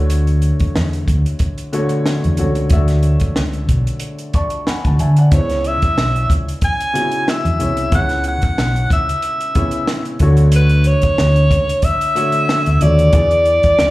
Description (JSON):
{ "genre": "lush 1970s-style soul", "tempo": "92 BPM", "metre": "4/4", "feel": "swing 54% on 16ths", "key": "unclear", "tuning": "A4 = 440 Hz", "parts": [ { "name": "warm baby grand piano", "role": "accompaniment", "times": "0.0-13.9 s", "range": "C#3 to C#6", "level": "-22 LUFS", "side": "left 1 dB", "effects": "none" }, { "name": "hollow-body short-scale fingered electric bass", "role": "bass", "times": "0.0-13.9 s", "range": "B1 to D3", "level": "-15 LUFS", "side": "equal", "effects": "none" }, { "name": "compact cocktail drum kit", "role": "drums", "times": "0.1-13.9 s", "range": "hi-hat, kick drum, snare drum", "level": "-18 LUFS", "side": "equal", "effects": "none" }, { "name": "clear alto saxophone", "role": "melody", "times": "5.3-13.9 s", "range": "B4 to G#5", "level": "-17 LUFS", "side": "equal", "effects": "slapback echo" } ], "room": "small room ambience", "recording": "live gig heard through the venue's PA, club ambience", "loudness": "-13 LUFS", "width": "side -18 dB against mid", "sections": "0.0-13.9 A section", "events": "grand piano fill 4.0-5.3", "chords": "0.0 Dmaj7; 5.3 C#m7; 10.2 Dmaj7; 13.1 E7" }